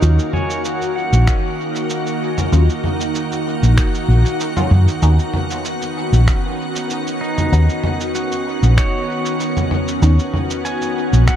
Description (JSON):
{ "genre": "ambient dub", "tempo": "96 BPM", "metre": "4/4", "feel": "swing 54% on 16ths", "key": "unclear", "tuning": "A4 = 440 Hz", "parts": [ { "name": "soft additive organ-like pad", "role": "sustained chords", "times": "0.0-11.4 s", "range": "D#3 to Gb5", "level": "-21 LUFS", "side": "equal", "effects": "ensemble chorus, built-in reverb" }, { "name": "pedal steel guitar", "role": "arpeggios", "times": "0.0-3.1, 7.2-11.4 s", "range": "Eb4 to Ab5", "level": "-26 LUFS", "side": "right 2 dB", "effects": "dub echo" }, { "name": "filtered dub chord stab", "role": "stabs", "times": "0.0-10.2 s", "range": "Gb3 to F4", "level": "-28 LUFS", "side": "left 2 dB", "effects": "none" }, { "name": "hollow-body short-scale fingered electric bass", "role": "bass", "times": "0.0-11.3 s", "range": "Bb1 to Gb2", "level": "-11 LUFS", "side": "equal", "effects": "none" }, { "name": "lo-fi sampler-style drum kit", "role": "drums", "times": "0.0-11.4 s", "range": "cabasa, finger snaps, toms", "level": "-24 LUFS", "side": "right 1 dB", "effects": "dub echo" }, { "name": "electronic kick drum", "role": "drums", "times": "1.3-11.4 s", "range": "none", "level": "-19 LUFS", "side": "equal", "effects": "none" } ], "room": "light reverb, digital ambience", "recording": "none", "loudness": "-15 LUFS", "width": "side -10 dB against mid", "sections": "0.0-11.4 A section", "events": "none", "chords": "0.0 Ebm9; 5.0 Badd9", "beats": "| 0.02 0.65 1.27 1.90 | 2.52 3.15 3.77 4.40 | 5.02 5.65 6.27 6.90 | 7.52 8.15 8.77 9.40 | 10.02 10.65 11.27" }